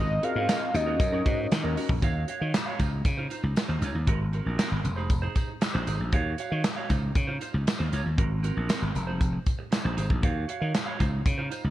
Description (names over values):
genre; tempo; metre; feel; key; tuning
early-eighties boogie funk; 117 BPM; 4/4; straight; Eb dorian; A4 = 440 Hz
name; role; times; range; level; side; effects
fat analog lead; melody; 0.0-1.8 s; Eb5 to F5; -31 LUFS; equal; chorus, ping-pong delay
clean electric guitar; riff; 0.0-11.7 s; C4 to F5; -35 LUFS; right 5 dB; lush chorus
slap bass; bass; 0.0-11.7 s; F1 to Eb3; -28 LUFS; equal; none
mellow tine electric piano; accompaniment; 0.2-1.9 s; C4 to Eb5; -33 LUFS; left 3 dB; lush chorus
modern studio drum kit; drums; 0.2-11.6 s; handclaps, hi-hat, kick drum, snare drum; -28 LUFS; equal; none
tambourine; percussion; 0.5-11.6 s; none; -46 LUFS; left 5 dB; none
room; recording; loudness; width
light reverb, small room ambience; bright 1980s-style digital production, cassette tape; -25 LUFS; side -14 dB against mid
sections
0.0-2.0 A section; 2.0-11.7 B section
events
none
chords
0.0 Ab9; 0.7 Ebm7; 2.0 Ebm9; 2.8 Dbmaj9; 4.1 Ab9; 4.8 Fm7; 6.1 Ebm9; 6.9 Dbmaj9; 8.2 Ab9; 8.9 Fm7; 10.2 Ebm9; 11.0 Dbmaj9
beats
0.49 1.00 1.51 | 2.02 2.54 3.05 3.56 | 4.08 4.59 5.10 5.61 | 6.13 6.64 7.15 7.67 | 8.18 8.69 9.20 9.72 | 10.23 10.74 11.26